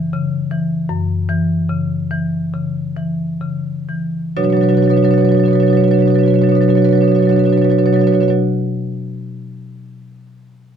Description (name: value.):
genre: classical, contemporary piece for solo marimba.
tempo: 62-80 BPM.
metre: 4/4.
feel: rubato.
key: B minor.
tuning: A4 = 442 Hz.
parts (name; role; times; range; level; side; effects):
marimba with medium mallets; solo; 0.0-8.4 s; F#2 to C#5; -14 LUFS; equal; none.
room: moderate stone room reverb, RT60 1.0 s.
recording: close, detailed microphones.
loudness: -13 LUFS.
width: side -7 dB against mid.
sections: 0.0-4.4 A section; 4.4-8.1 B section.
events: slowing down 0.0-4.4.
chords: 0.0 F#5; 4.4 Bmadd9.